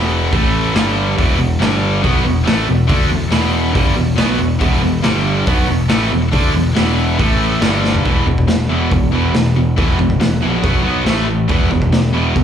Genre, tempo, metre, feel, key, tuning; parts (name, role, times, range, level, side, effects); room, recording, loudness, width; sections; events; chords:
hard rock; 140 BPM; 4/4; straight; A4 = 440 Hz
overdriven semi-hollow guitar; riff; 0.0-12.4 s; E2 to D4; -19 LUFS; right 10 dB; spring reverb
tight distorted guitar; riff; 0.0-12.4 s; E2 to D4; -19 LUFS; left 9 dB; distortion, slapback echo
fuzz picked electric bass; bass; 0.0-12.4 s; E1 to D2; -18 LUFS; equal; overdrive
raw garage drum kit; drums; 0.3-12.4 s; hi-hat, kick drum, snare drum, toms; -18 LUFS; equal
light reverb; live gig heard through the venue's PA, club reverb; -12 LUFS; side -9 dB against mid
0.0-8.0 A section; 8.0-12.4 B section
drum fill 7.8
0.3 A5; 0.8 G5; 1.2 E5; 1.6 G5; 2.0 E5; 5.0 G5; 5.5 E5; 7.2 A5; 7.6 G5; 8.0 E5; 10.6 B5; 11.1 A5; 11.5 E5